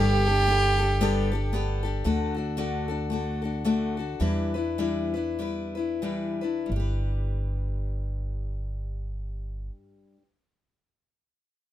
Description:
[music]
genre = acoustic folk duo or small band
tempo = 86-116 BPM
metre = 4/4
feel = swing 59% on 8ths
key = G major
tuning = A4 = 444 Hz
[part]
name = warm fiddle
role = melody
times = 0.0-1.5 s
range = G4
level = -24 LUFS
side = right 2 dB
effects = none
[part]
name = picked steel-string acoustic guitar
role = accompaniment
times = 0.0-10.3 s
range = D3 to B4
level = -28 LUFS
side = left 4 dB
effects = none
[part]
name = upright bass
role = bass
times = 0.0-9.7 s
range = G1 to E2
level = -29 LUFS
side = right 1 dB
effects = none
[sound]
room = light reverb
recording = close, detailed microphones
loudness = -25 LUFS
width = side -12 dB against mid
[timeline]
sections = 0.0-2.0 A section; 2.0-6.7 B section; 6.7-11.7 C section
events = slowing down 2.0-6.7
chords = 0.0 Gadd9; 2.0 D; 4.2 Em7; 6.7 G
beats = 0.48 1.00 1.53 | 2.05 2.57 3.10 3.64 | 4.20 4.78 5.39 6.03 | 6.70 7.40 8.09 8.79 | 9.48 10.18

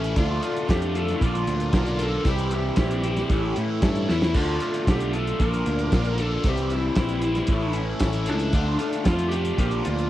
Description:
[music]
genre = folk rock and heartland rock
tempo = 115 BPM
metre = 4/4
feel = straight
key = D minor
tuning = A4 = 440 Hz
[part]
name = lead guitar through a small cranked amp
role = melody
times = 0.0-10.1 s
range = C#4 to Bb4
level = -29 LUFS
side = equal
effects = overdrive, cassette tape
[part]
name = picked twelve-string acoustic guitar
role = accompaniment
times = 0.0-10.1 s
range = A2 to Bb4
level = -32 LUFS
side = left 7 dB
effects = cassette tape
[part]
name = crunchy overdriven guitar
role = riff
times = 0.0-10.1 s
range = A2 to F4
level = -28 LUFS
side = right 1 dB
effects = phaser, cassette tape
[part]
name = picked electric bass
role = bass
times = 0.0-10.1 s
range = A1 to A2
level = -26 LUFS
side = equal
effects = none
[part]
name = cloth-damped thuddy drum kit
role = drums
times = 0.0-10.1 s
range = crash cymbal, hi-hat, kick drum, snare drum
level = -24 LUFS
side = equal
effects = cassette tape
[sound]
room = little or no reverb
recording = home recording on cassette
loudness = -21 LUFS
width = side -14 dB against mid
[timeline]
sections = 0.0-10.1 A section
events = drum fill 4.1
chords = 0.2 Dm; 1.2 Bb; 2.3 C; 3.3 A; 4.3 Dm; 5.4 Bb; 6.4 C; 7.5 A; 8.5 Dm; 9.6 Bb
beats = | 0.17 0.69 1.21 1.73 | 2.26 2.78 3.30 3.83 | 4.35 4.87 5.40 5.92 | 6.44 6.97 7.49 8.01 | 8.54 9.06 9.58

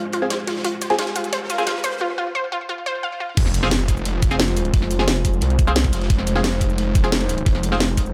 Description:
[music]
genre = dark technical drum and bass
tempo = 176 BPM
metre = 4/4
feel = straight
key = F minor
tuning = A4 = 442 Hz
[part]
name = dark analog pad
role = sustained chords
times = 0.0-8.1 s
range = Ab3 to C5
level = -30 LUFS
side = equal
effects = chorus, sidechain pumping
[part]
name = unison pluck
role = arpeggios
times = 0.0-3.3 s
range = F4 to F5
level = -27 LUFS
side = equal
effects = sidechain pumping, delay
[part]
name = riser, swell and impact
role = sound effects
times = 0.1-4.7 s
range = none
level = -35 LUFS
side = equal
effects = none
[part]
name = crunchy breakbeat drum kit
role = drums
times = 0.1-8.1 s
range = hi-hat, snare drum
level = -35 LUFS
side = equal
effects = none
[part]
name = drum and bass drum kit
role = drums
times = 0.1-8.1 s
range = crash cymbal, hi-hat, shaker, snare drum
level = -26 LUFS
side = equal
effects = none
[part]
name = band-passed chord stab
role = stabs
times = 0.2-7.8 s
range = C4 to Ab4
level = -28 LUFS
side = equal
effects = phaser, cassette tape, delay
[part]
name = detuned saw bass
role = bass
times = 3.4-8.1 s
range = F1 to C2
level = -24 LUFS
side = equal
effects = chorus, tube saturation, sidechain pumping
[part]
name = electronic kick drum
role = drums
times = 3.4-8.0 s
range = none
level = -21 LUFS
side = equal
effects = none
[sound]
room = light reverb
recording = high-pass filter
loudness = -20 LUFS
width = mono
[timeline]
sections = 0.0-3.4 A section; 3.4-8.1 B section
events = build-up 0.0-3.4; riser 0.1-2.0; filter sweep on synth arpeggio sound 0.0-3.4; filter sweep on synth stab 0.0-3.4; filter sweep 0.0-3.4; break 2.0-3.4; swell 2.8-3.4; drop 3.4-8.1; impact 3.4-4.7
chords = 0.0 Fm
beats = 0.30 | 0.65 0.99 1.33 1.67 | 2.01 2.35 2.69 3.03 | 3.37 3.71 4.05 4.39 | 4.74 5.08 5.42 5.76 | 6.10 6.44 6.78 7.12 | 7.46 7.80

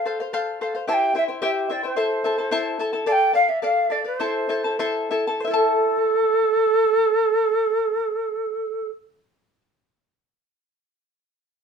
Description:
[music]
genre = andean folk, Andean ensemble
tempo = 89-111 BPM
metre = 2/4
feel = straight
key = A minor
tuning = A4 = 440 Hz
[part]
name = large quena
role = melody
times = 0.0-8.9 s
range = A4 to A5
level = -20 LUFS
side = right 1 dB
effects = none
[part]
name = charango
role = accompaniment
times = 0.0-9.6 s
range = E4 to A5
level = -23 LUFS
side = left 3 dB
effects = none
[sound]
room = moderate studio reverb, RT60 0.6 s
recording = minimal, uncompressed stereo recording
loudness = -19 LUFS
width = side -6 dB against mid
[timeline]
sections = 0.0-5.4 A section; 5.4-8.1 B section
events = slowing down 3.1-5.4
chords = 0.0 F; 0.9 C; 2.0 Am; 3.1 Dm; 4.2 Am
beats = 0.35 | 0.89 1.44 | 1.98 2.52 | 3.06 3.61 | 4.18 4.78 | 5.42 6.10 | 6.78 7.45

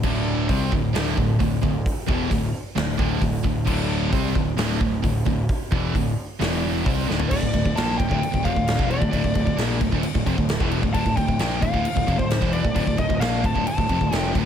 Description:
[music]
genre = heavy metal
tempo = 132 BPM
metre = 4/4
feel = straight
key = D minor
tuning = A4 = 444 Hz
[part]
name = heavy high-gain guitar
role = riff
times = 0.0-7.3 s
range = D2 to C4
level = -30 LUFS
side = right 1 dB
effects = distortion
[part]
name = high-gain distorted guitar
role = riff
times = 0.0-14.5 s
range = D2 to C4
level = -28 LUFS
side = right 11 dB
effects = distortion
[part]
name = sludgy distorted guitar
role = riff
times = 0.0-14.5 s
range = D2 to C4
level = -26 LUFS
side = left 10 dB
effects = overdrive
[part]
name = fuzz picked electric bass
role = bass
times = 0.0-14.5 s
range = D1 to C2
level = -26 LUFS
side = equal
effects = overdrive
[part]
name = big rock drum kit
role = drums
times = 0.0-14.5 s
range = crash cymbal, hi-hat, kick drum, snare drum, toms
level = -25 LUFS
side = equal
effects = none
[part]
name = high-gain lead guitar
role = melody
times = 7.3-14.3 s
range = C5 to A5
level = -26 LUFS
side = left 2 dB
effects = distortion
[sound]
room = small room ambience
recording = none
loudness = -20 LUFS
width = side -9 dB against mid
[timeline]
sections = 0.0-7.3 A section; 7.3-14.5 B section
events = half time 0.0-7.3; drum fill 7.1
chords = 0.0 D5; 6.4 E5; 6.9 D5; 7.3 Dm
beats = | 0.03 0.49 0.94 1.40 | 1.85 2.31 2.76 3.22 | 3.67 4.13 4.58 5.04 | 5.49 5.94 6.40 6.85 | 7.31 7.76 8.21 8.67 | 9.12 9.58 10.03 10.49 | 10.94 11.39 11.85 12.30 | 12.76 13.21 13.67 14.12

